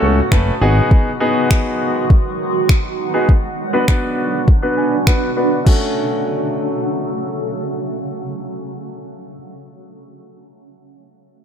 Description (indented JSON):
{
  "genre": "dance-pop",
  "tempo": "101 BPM",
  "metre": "4/4",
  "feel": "straight",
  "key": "F# minor",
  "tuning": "A4 = 440 Hz",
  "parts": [
    { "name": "clear concert grand piano", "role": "accompaniment", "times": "0.0-9.3 s", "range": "A3 to C#6", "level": "-19 LUFS", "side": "left 1 dB", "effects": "low-pass filter" },
    { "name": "shimmering ambient pad", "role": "sustained chords", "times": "0.0-8.8 s", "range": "A2 to A4", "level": "-22 LUFS", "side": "right 2 dB", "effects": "chorus, built-in reverb, phaser, sidechain pumping, low-pass filter" },
    { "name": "chorused synth bass", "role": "bass", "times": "0.0-0.8 s", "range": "F#1 to C#2", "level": "-14 LUFS", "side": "left 1 dB", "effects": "sidechain pumping" },
    { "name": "smooth R&B drum kit", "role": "drums", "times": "0.3-5.8 s", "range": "crash cymbal, finger snaps, kick drum", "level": "-13 LUFS", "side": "equal", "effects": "none" }
  ],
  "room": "little or no reverb",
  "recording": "none",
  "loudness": "-14 LUFS",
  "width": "side -8 dB against mid",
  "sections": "0.0-5.7 A section; 5.7-8.0 B section",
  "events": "grand piano fill 0.0-0.9, 4.5-5.7; filter sweep 0.0-5.7",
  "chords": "0.0 F#m; 0.6 G#m7; 3.3 Bm; 5.7 F#m",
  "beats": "0.32 | 0.91 1.51 2.10 2.69 | 3.29 3.88 4.48 5.07 | 5.66 6.26 6.85 7.45"
}